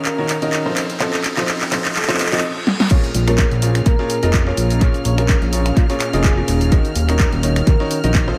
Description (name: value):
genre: piano house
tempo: 126 BPM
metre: 4/4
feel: swing 55% on 16ths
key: Bb minor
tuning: A4 = 440 Hz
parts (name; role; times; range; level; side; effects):
- dark studio string section; sustained chords; 0.0-8.4 s; F6; -37 LUFS; equal; sidechain pumping
- bright grand piano; riff; 0.0-8.4 s; Bb2 to Eb5; -25 LUFS; equal; sidechain pumping, analog delay
- riser and reverse cymbal; sound effects; 0.0-2.9 s; none; -33 LUFS; equal; none
- ethereal airy pad; texture; 0.0-8.4 s; C4 to Bb5; -32 LUFS; equal; none
- breathy flute-like synth lead; melody; 0.1-8.1 s; Ab4 to Db5; -30 LUFS; equal; chorus, analog delay
- fat analog bass; bass; 0.1-8.3 s; Eb1 to Bb2; -22 LUFS; equal; sidechain pumping, high-pass filter
- punchy analog drum machine; drums; 0.1-8.3 s; cabasa, crash cymbal, finger snaps, handclaps, hi-hat, snare drum; -24 LUFS; equal; analog delay
- dusty soul sampler-style drum kit; drums; 2.9-8.4 s; hi-hat, snare drum; -38 LUFS; equal; none
- electronic kick drum; drums; 2.9-8.3 s; none; -18 LUFS; equal; none
room: moderate spring reverb, RT60 2.1 s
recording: echo-heavy mix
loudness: -17 LUFS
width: mono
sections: 0.0-2.9 A section; 2.9-8.4 B section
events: build-up 0.0-2.9; drum fill 0.0-2.4, 2.7; riser 0.0-2.4; reverse cymbal 2.0-2.9; drop 2.9-8.4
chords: 0.0 Ebm7; 0.8 F7; 2.9 Bbm7; 6.7 Ebm7